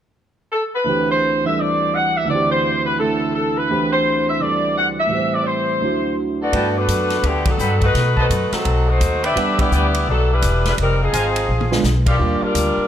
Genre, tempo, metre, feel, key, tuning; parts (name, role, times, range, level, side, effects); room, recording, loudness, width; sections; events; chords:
jazz, big band swing; 169 BPM; 4/4; swing 63% on 8ths; A4 = 441 Hz
clear saxophone section; melody; 0.5-12.9 s; D3 to F#5; -19 LUFS; left 1 dB
warm concert grand piano; accompaniment; 0.8-12.9 s; D2 to F#5; -22 LUFS; right 4 dB
clear trumpet section; stabs; 6.5-12.2 s; G4 to B5; -27 LUFS; equal
upright bass; bass; 6.5-12.8 s; E1 to B2; -19 LUFS; equal
swinging big-band drum kit; drums; 6.5-12.7 s; hi-hat, kick drum, ride cymbal, snare drum, toms; -24 LUFS; equal
light reverb; close, detailed microphones; -16 LUFS; side -10 dB against mid
0.9-6.5 A section; 6.5-12.9 B section
band accent 7.4, 9.5, 12.0; drum fill 11.5-11.8
0.0 N.C.; 0.9 D7sus4; 5.1 Am7; 5.8 D7; 6.5 Gmaj9; 7.9 B7b9; 9.4 Em7; 10.8 Fm7; 11.5 Bb7b9; 12.2 Ebmaj9